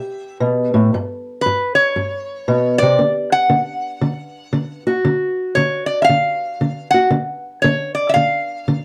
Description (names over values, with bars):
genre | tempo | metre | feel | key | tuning
blues | 116 BPM | 4/4 | swing 64% on 8ths | unclear | A4 = 440 Hz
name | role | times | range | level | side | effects
lap resonator guitar | melody | 0.0-8.8 s | B4 to F#5 | -19 LUFS | equal | none
fingerpicked steel-string acoustic guitar | accompaniment | 0.0-8.8 s | G2 to G4 | -20 LUFS | equal | none
room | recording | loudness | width
moderate studio ambience, RT60 0.5 s | dark, warm production | -18 LUFS | mono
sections
0.0-8.8 A section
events
none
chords
0.0 C; 0.9 G; 3.0 D